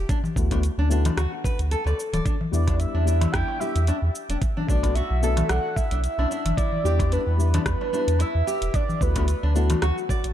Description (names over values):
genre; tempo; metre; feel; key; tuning
organic downtempo; 111 BPM; 4/4; swing 55% on 16ths; E minor; A4 = 440 Hz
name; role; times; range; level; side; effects
nylon-string guitar; arpeggios; 0.0-10.2 s; D4 to D5; -31 LUFS; left 2 dB; vintage 12-bit sampler grit, ping-pong delay
warm sub bass; bass; 0.0-10.3 s; D1 to E2; -22 LUFS; equal; sidechain pumping
afro-pop drum kit; drums; 0.1-10.3 s; cabasa, hi-hat, rim click; -33 LUFS; equal; none
electronic kick drum; drums; 0.1-10.2 s; none; -25 LUFS; equal; overdrive
darbuka; percussion; 0.2-10.2 s; none; -31 LUFS; left 3 dB; none
felt-muted upright piano; accompaniment; 0.4-9.7 s; G3 to F#4; -32 LUFS; left 6 dB; sidechain pumping, ping-pong delay
breathy flute-like synth lead; melody; 2.5-10.3 s; F#4 to G5; -28 LUFS; right 2 dB; analog chorus, tape echo
room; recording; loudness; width
studio ambience; dark, warm production; -21 LUFS; side -11 dB against mid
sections
0.0-10.3 A section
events
none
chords
0.1 D6; 2.3 Em7; 4.4 Bm7; 6.6 Em7; 8.7 D6